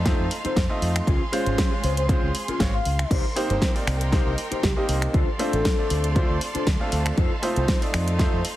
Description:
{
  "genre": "nu-disco, nu disco",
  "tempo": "118 BPM",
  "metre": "4/4",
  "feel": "swing 54% on 16ths",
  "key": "unclear",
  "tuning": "A4 = 440 Hz",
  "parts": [
    { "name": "clear concert grand piano", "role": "accompaniment", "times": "0.0-8.4 s", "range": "Ab3 to F5", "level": "-29 LUFS", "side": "right 1 dB", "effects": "sidechain pumping, slapback echo" },
    { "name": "clear studio violin section", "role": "sustained chords", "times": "0.0-8.6 s", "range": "Eb4 to C6", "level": "-33 LUFS", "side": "right 1 dB", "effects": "vintage 12-bit sampler grit, sidechain pumping" },
    { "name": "fingered electric bass with an envelope filter", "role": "bass", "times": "0.0-8.4 s", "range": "G1 to F2", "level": "-25 LUFS", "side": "equal", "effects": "none" },
    { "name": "mellow electric guitar", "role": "riff", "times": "0.1-8.4 s", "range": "Db4 to C5", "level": "-31 LUFS", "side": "left 2 dB", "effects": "wide subtle chorus, slapback echo" },
    { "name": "electronic kick drum", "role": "drums", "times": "0.1-8.3 s", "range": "none", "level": "-23 LUFS", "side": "equal", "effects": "studio reverb" },
    { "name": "pop drum kit", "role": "drums", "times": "0.1-8.6 s", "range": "crash cymbal, finger snaps, hi-hat, snare drum", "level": "-29 LUFS", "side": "equal", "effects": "studio reverb" },
    { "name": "soft octave-layered synth lead", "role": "melody", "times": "0.5-7.8 s", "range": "G4 to F5", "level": "-32 LUFS", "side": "left 2 dB", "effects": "chorus, phaser, analog delay" }
  ],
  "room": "little or no reverb",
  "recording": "heavily compressed radio sound",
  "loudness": "-20 LUFS",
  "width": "side -14 dB against mid",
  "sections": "0.0-8.6 A section",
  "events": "none",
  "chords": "0.0 F7; 1.1 Dbmaj7; 3.1 Cm7; 5.1 Dm7; 7.2 F7"
}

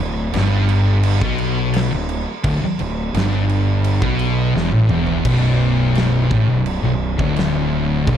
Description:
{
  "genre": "stoner and doom metal",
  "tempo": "85 BPM",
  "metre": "4/4",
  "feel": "straight",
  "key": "B minor",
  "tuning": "A4 = 441 Hz",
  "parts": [
    { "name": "thick fuzz guitar", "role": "riff", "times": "0.0-8.2 s", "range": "B1 to B2", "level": "-19 LUFS", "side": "left 5 dB", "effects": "distortion" },
    { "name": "thick fuzz guitar", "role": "riff", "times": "0.0-8.2 s", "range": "B1 to B2", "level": "-20 LUFS", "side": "right 6 dB", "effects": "distortion" },
    { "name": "fuzz fingered electric bass", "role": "bass", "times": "0.0-8.2 s", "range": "B0 to B1", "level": "-23 LUFS", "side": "equal", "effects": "overdrive" },
    { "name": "big rock drum kit", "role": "drums", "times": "0.3-8.2 s", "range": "crash cymbal, kick drum, snare drum, toms", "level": "-24 LUFS", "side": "equal", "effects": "none" }
  ],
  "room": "light reverb, small room ambience",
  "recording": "dark, warm production",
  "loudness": "-15 LUFS",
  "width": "side -9 dB against mid",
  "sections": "0.0-5.3 A section; 5.3-8.2 B section",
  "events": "drum fill 4.6-5.3",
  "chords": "0.0 D5; 5.3 Bm"
}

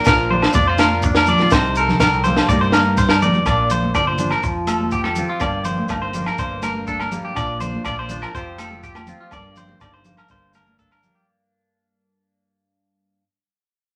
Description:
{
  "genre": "highlife guitar band",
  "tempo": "123 BPM",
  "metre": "4/4",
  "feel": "straight",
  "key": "Bb major",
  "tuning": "A4 = 437 Hz",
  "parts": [
    { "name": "semi-hollow electric guitar", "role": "accompaniment", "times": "0.0-13.2 s", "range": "G2 to Bb4", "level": "-28 LUFS", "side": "equal", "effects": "phaser" },
    { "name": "clean electric guitar", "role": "arpeggios", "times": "0.0-11.3 s", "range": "F4 to D5", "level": "-23 LUFS", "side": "equal", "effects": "none" },
    { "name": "maracas", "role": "percussion", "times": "0.0-11.1 s", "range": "none", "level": "-39 LUFS", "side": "equal", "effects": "none" },
    { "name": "deep dub fingered electric bass", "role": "bass", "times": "0.1-11.1 s", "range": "F1 to G2", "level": "-28 LUFS", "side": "equal", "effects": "none" },
    { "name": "compact cocktail drum kit", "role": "drums", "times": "0.1-11.1 s", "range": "hi-hat, kick drum, rim click, snare drum", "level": "-23 LUFS", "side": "equal", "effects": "none" },
    { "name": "agogo bells", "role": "percussion", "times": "0.1-11.0 s", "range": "none", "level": "-29 LUFS", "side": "equal", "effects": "none" },
    { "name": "congas", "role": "percussion", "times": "0.3-11.1 s", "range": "none", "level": "-27 LUFS", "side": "equal", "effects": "none" }
  ],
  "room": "wet studio reverb, RT60 0.7 s",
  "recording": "none",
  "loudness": "-18 LUFS",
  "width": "mono",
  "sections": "0.0-3.5 A section; 3.5-11.3 B section",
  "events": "fade-out 3.5-11.3",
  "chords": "0.0 Bb; 1.5 Cm7; 3.5 Bb; 4.4 Fadd9; 5.4 Eb/G; 6.4 Gm; 7.4 Bb; 8.3 Fadd9; 9.3 Eb/G; 10.3 Gm"
}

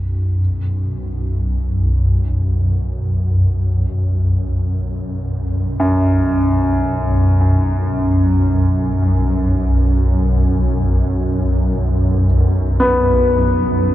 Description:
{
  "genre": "dark ambient drone",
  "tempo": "free time",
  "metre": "none",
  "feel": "none",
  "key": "unclear",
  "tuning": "A4 = 440 Hz",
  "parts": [
    { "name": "swarming drone", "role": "drone", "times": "0.0-13.9 s", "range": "B1 to F#2", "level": "-15 LUFS", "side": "equal", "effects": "built-in reverb" },
    { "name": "warm grand piano", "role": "arpeggios", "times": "5.8-13.9 s", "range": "F#2 to B3", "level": "-19 LUFS", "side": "equal", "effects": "tape echo" }
  ],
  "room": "moderate huge ambient reverb, RT60 7.6 s",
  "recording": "worn, warbling old tape, cassette tape, warbly pitch drift",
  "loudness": "-14 LUFS",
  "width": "side -14 dB against mid",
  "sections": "0.0-13.9 A section",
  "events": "filter sweep on synth drone 0.0-13.9",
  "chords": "0.0 B5"
}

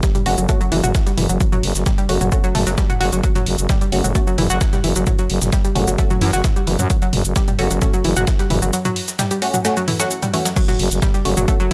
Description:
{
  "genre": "driving peak-time techno",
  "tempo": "131 BPM",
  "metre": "4/4",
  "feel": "straight",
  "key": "F# phrygian",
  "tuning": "A4 = 440 Hz",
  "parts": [
    { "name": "analog pluck", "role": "riff", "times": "0.0-11.7 s", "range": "E3 to F#4", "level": "-25 LUFS", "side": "equal", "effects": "chorus, tube saturation, sidechain pumping, tape echo" },
    { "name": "breakbeat sampler-style drum kit", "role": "drums", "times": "0.0-11.7 s", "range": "hi-hat, snare drum", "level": "-34 LUFS", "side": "equal", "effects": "none" },
    { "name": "electronic kick drum", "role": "drums", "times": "0.0-11.6 s", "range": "none", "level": "-21 LUFS", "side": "equal", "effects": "none" },
    { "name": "punchy analog drum machine", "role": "drums", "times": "0.0-11.7 s", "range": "crash cymbal, hi-hat, shaker, toms", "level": "-26 LUFS", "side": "equal", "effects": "sidechain pumping on hats, sidechain pumping on toms, sidechain pumping on perc, sidechain pumping on cymbals" },
    { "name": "filtered dub chord stab", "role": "stabs", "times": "0.3-11.6 s", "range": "A3 to F#4", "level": "-27 LUFS", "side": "equal", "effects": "phaser, sidechain pumping, analog delay" },
    { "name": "growling FM bass", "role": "bass", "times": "0.3-11.7 s", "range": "F#1 to F#2", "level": "-21 LUFS", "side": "equal", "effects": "sidechain pumping" }
  ],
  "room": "little or no reverb",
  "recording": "dry, gritty hardware recording",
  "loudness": "-18 LUFS",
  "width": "mono",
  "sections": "0.0-10.6 A section; 10.6-11.7 B section",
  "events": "kick drops out 8.7-10.6; drop 10.6-11.7",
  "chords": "0.0 F#m"
}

